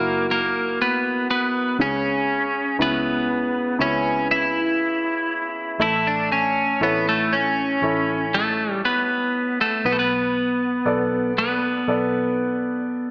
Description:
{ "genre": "pop ballad", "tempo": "59 BPM", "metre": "4/4", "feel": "straight", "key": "B minor", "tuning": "A4 = 440 Hz", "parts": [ { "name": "twelve-string electric guitar", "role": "melody", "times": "0.0-13.1 s", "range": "A3 to E4", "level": "-20 LUFS", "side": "equal", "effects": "spring reverb" }, { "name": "clear upright piano", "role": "accompaniment", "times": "0.0-13.1 s", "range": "C#3 to D5", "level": "-25 LUFS", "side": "equal", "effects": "none" }, { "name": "vintage muted fingered electric bass", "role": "bass", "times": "0.0-13.1 s", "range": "F#1 to C#2", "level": "-34 LUFS", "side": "equal", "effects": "none" } ], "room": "light reverb, small room reverb", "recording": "small speaker sound", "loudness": "-19 LUFS", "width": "side -34 dB against mid", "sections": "0.0-13.1 A section", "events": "none", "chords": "0.0 F#7; 1.8 C#m7; 5.8 A; 9.8 Bm7" }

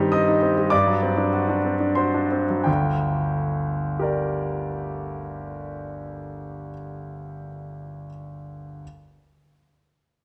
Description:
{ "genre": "classical, virtuoso piano study", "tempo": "83-104 BPM", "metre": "3/4", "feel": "rubato", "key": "G minor", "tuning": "A4 = 440 Hz", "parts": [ { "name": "bright grand piano", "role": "solo", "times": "0.0-8.8 s", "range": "G1 to Eb6", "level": "-25 LUFS", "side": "equal", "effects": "none" } ], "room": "moderate concert hall reverb, RT60 2.2 s", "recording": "dark, warm production", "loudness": "-23 LUFS", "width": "mono", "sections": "0.0-2.7 A section; 2.7-6.6 B section", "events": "slowing down 0.0-2.7", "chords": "0.0 Cm/G; 0.7 D7/G; 2.7 Gm" }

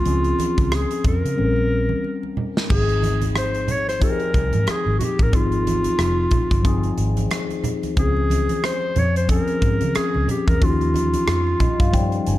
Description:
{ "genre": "lush 1970s-style soul", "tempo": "91 BPM", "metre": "4/4", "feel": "swing 58% on 16ths", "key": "unclear", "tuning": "A4 = 440 Hz", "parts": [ { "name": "clear clarinet", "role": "melody", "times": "0.0-12.4 s", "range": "F4 to Db5", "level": "-24 LUFS", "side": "equal", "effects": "none" }, { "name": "mellow tine electric piano", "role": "accompaniment", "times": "0.0-12.4 s", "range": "F3 to Ab5", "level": "-25 LUFS", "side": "left 4 dB", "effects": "phaser" }, { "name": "vintage muted fingered electric bass", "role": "bass", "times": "0.1-12.4 s", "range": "F1 to Db3", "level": "-22 LUFS", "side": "equal", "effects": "none" }, { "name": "modern studio drum kit", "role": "drums", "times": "0.1-12.4 s", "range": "crash cymbal, hi-hat, kick drum, rim click, snare drum", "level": "-23 LUFS", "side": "equal", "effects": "none" }, { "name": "congas", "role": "percussion", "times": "0.4-12.1 s", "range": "none", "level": "-29 LUFS", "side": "right 4 dB", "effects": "none" } ], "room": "light reverb", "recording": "dark, warm production", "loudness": "-18 LUFS", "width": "side -15 dB against mid", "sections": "0.0-2.7 A section; 2.7-12.4 B section", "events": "drum fill 1.4-2.7; tine electric piano fill 11.3-12.4", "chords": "0.1 Dbmaj7; 1.4 Bbm69; 2.7 Ab6; 8.0 Dbmaj7; 10.6 Eb9" }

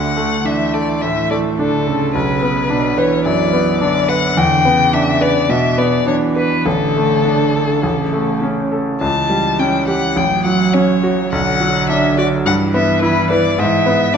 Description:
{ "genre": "quick classical-period movement for piano trio", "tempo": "106 BPM", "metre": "4/4", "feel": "rubato", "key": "D major", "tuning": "A4 = 439 Hz", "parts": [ { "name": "rich violin", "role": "melody", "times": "0.0-14.2 s", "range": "A4 to A5", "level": "-18 LUFS", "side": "left 6 dB", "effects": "none" }, { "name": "rich cello", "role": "second line", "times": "0.0-14.2 s", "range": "B2 to F#3", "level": "-20 LUFS", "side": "right 7 dB", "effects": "none" }, { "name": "bright grand piano", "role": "accompaniment", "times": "0.0-14.2 s", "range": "A1 to B4", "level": "-16 LUFS", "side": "equal", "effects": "none" } ], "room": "wet recital hall reverb, RT60 1.5 s", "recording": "nothing above 7.9 kHz", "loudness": "-13 LUFS", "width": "side -7 dB against mid", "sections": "0.0-14.2 A section", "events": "none", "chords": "0.0 D; 2.1 Bm; 4.4 Em7; 6.7 D5/A; 7.8 A; 9.0 C#dim; 10.2 F#m/A; 11.3 Bm; 12.5 Em/G; 13.6 E/G#" }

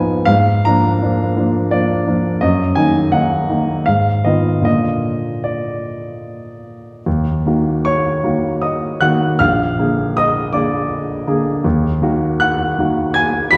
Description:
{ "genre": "classical, romantic character piece for solo piano", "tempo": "74-87 BPM", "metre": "3/4", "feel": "rubato", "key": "Eb minor", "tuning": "A4 = 440 Hz", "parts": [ { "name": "warm baby grand piano", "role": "solo", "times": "0.0-13.6 s", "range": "Bb1 to Cb7", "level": "-17 LUFS", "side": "equal", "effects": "none" } ], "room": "wet recital hall reverb, RT60 1.6 s", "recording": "dark, warm production", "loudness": "-17 LUFS", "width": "mono", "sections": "0.0-7.1 A section; 7.1-13.6 B section", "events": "none", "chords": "0.3 Bb7/Ab; 2.4 Ebm/Gb; 3.9 Fm7b5/Ab; 4.7 Bb; 7.1 Ebm; 9.4 Bb7; 11.6 Ebm" }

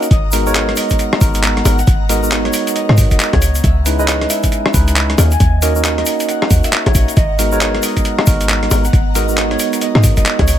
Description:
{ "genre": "UK garage, two-step garage", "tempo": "136 BPM", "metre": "4/4", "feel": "swing 62% on 16ths", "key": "G# minor", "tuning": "A4 = 439 Hz", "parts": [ { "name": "concert harp", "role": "melody", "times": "0.0-10.6 s", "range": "A#4 to G#5", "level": "-23 LUFS", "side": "right 2 dB", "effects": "ping-pong delay" }, { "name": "ethereal airy pad", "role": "sustained chords", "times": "0.0-10.6 s", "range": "B3 to A#5", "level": "-25 LUFS", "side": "right 2 dB", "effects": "ensemble chorus, built-in reverb, phaser, sidechain pumping" }, { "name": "tine electric piano", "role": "stabs", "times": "0.0-10.5 s", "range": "G#3 to B4", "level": "-20 LUFS", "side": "right 1 dB", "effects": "phaser, ping-pong delay" }, { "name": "boom bap sampler-style drum kit", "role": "drums", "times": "0.0-10.6 s", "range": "bongos, handclaps, hi-hat, rim click", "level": "-18 LUFS", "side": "left 1 dB", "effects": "overdrive" }, { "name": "tube shaker", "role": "percussion", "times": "0.0-10.6 s", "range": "none", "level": "-25 LUFS", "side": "left 4 dB", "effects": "none" }, { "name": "short 808-style bass", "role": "bass", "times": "0.1-10.6 s", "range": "F#1 to G#2", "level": "-15 LUFS", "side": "equal", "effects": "none" }, { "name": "electronic kick drum", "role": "drums", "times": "0.1-10.5 s", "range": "none", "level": "-15 LUFS", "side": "equal", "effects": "overdrive" } ], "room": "little or no reverb", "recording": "none", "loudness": "-11 LUFS", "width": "side -11 dB against mid", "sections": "0.0-10.6 A section", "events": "none", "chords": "0.1 G#m9; 3.4 C#m7; 5.2 D#m7; 7.2 G#m9" }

